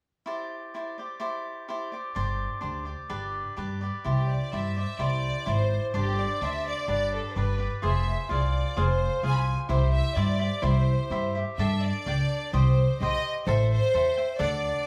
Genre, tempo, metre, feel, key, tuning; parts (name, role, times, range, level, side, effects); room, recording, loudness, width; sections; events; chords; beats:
mexican folk, mariachi; 127 BPM; 2/4; rubato; C major; A4 = 439 Hz
cavaquinho; accompaniment; 0.3-14.9 s; D4 to G5; -34 LUFS; equal
upright bass; bass; 2.2-14.7 s; F1 to G2; -28 LUFS; equal
clear studio violin section; melody; 4.1-14.9 s; G4 to B5; -32 LUFS; equal
moderate large studio reverb, RT60 0.9 s; band playing live in one room; -27 LUFS; mono
0.3-4.1 A section; 4.1-11.6 B section; 11.6-14.9 C section
0.3 Cadd9; 2.2 Gsus4; 3.1 G; 4.1 Cadd9; 5.9 Gsus4; 6.9 G; 7.8 Fm; 9.7 C; 11.6 Gsus2; 12.5 Cm; 13.5 Am7
| 0.26 0.74 | 1.21 1.69 | 2.15 2.62 | 3.10 3.58 | 4.06 4.54 | 5.01 5.48 | 5.95 6.42 | 6.88 7.36 | 7.83 8.31 | 8.78 9.24 | 9.70 10.17 | 10.64 11.11 | 11.59 12.07 | 12.54 13.01 | 13.48 13.94 | 14.40